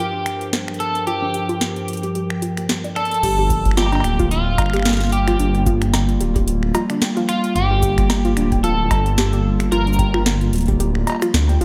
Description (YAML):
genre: IDM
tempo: 111 BPM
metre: 4/4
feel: swing 56% on 16ths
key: G minor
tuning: A4 = 440 Hz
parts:
  - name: electric guitar at the edge of break-up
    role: melody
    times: 0.0-10.2 s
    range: F4 to Bb4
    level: -26 LUFS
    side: equal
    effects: analog chorus, analog delay
  - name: warbly tape-like pad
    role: sustained chords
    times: 0.0-11.6 s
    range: G2 to Bb4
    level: -26 LUFS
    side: equal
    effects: chorus, built-in reverb
  - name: warbly dusty pluck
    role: arpeggios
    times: 0.0-11.6 s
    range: D4 to G5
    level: -28 LUFS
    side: equal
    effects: chorus, cassette tape, analog delay
  - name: booming analog drum machine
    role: drums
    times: 0.3-11.6 s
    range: cowbell, crash cymbal, finger snaps, hi-hat, shaker, snare drum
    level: -26 LUFS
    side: equal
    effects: none
  - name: dark detuned saw bass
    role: bass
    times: 3.2-11.6 s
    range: D1 to D2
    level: -21 LUFS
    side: equal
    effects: tube saturation
  - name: electronic kick drum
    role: drums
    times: 3.2-10.8 s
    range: none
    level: -24 LUFS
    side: equal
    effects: none
room: moderate plate reverb, RT60 1.9 s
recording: dreamy mix soaked in reverb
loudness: -19 LUFS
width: mono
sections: 0.0-3.2 A section; 3.2-11.6 B section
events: filter sweep on synth pluck 0.0-3.2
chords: 0.0 Gm7